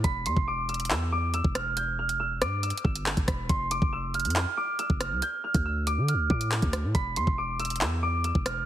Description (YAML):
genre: hip hop, drill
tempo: 139 BPM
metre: 4/4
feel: half-time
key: E phrygian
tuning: A4 = 444 Hz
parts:
  - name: Celtic harp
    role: melody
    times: 0.0-8.7 s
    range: B5 to G6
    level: -30 LUFS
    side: right 1 dB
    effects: low-pass filter
  - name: hard-hitting 808-style bass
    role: bass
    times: 0.0-8.7 s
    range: E1 to D3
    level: -30 LUFS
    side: equal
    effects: none
  - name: drill drum kit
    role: drums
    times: 0.0-8.6 s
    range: handclaps, hi-hat, kick drum, rim click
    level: -28 LUFS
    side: equal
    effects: none
room: digital ambience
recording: heavily compressed radio sound, multiband compression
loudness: -25 LUFS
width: side -12 dB against mid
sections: 0.0-8.7 A section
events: none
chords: 0.0 Em; 3.5 F5; 5.2 D5; 6.9 N.C.